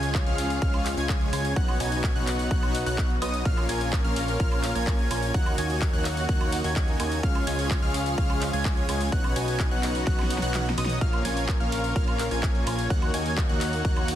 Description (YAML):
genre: EDM, festival progressive house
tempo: 127 BPM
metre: 4/4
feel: straight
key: Eb minor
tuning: A4 = 440 Hz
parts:
  - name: dark studio string section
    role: sustained chords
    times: 0.0-14.2 s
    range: Db3 to Bb4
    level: -34 LUFS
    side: left 2 dB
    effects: sidechain pumping
  - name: plucky unison lead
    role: arpeggios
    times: 0.0-14.2 s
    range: D#6 to Ab6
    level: -34 LUFS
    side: equal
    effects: sidechain pumping, tape echo
  - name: supersaw chords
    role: riff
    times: 0.0-14.2 s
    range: Ab3 to Ab5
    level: -30 LUFS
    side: right 1 dB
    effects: sidechain pumping, tape echo
  - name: fat analog bass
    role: bass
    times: 0.0-14.2 s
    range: Bb1 to Eb2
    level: -30 LUFS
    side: equal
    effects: sidechain pumping
  - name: big-room dance drum kit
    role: drums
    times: 0.0-14.2 s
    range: handclaps, hi-hat, ride cymbal, snare drum, tambourine, woodblock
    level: -34 LUFS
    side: equal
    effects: overdrive
  - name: electronic kick drum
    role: drums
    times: 0.1-13.9 s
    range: none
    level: -25 LUFS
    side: equal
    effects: overdrive
room: light reverb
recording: dense, heavily limited modern master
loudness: -23 LUFS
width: side -11 dB against mid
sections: 0.0-14.2 A section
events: drum fill 10.1-11.0; kick drops out 10.5-11.0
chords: 0.0 Db; 1.6 Badd9; 3.5 Bbm; 5.3 Ebm7; 7.2 Db; 9.1 Badd9; 11.0 Bbm; 12.9 Ebm7